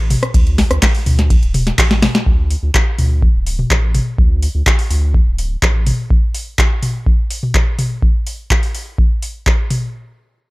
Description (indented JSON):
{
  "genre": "acid house",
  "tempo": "125 BPM",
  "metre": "4/4",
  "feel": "straight",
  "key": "unclear",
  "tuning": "A4 = 440 Hz",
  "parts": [
    { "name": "round analog bass", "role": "bass", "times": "0.0-5.9 s", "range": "D1 to D2", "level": "-17 LUFS", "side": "equal", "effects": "tube saturation, sidechain pumping" },
    { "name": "booming analog drum machine", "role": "drums", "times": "0.1-9.8 s", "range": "handclaps, hi-hat, ride cymbal, rim click, snare drum, toms", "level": "-17 LUFS", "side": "left 1 dB", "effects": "overdrive" },
    { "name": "electronic kick drum", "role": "drums", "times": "0.3-9.6 s", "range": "none", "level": "-14 LUFS", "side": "equal", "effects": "overdrive" }
  ],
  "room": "little or no reverb",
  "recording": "none",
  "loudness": "-13 LUFS",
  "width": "side -22 dB against mid",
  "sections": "0.0-2.3 A section; 2.3-9.9 B section",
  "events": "drop 0.0-2.3; drum fill 2.0",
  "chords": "none",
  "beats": "| 0.34 0.82 1.30 1.78 | 2.26 2.74 3.22 3.70 | 4.18 4.66 5.14 5.62 | 6.10 6.58 7.06 7.54 | 8.02 8.50 8.98 9.46"
}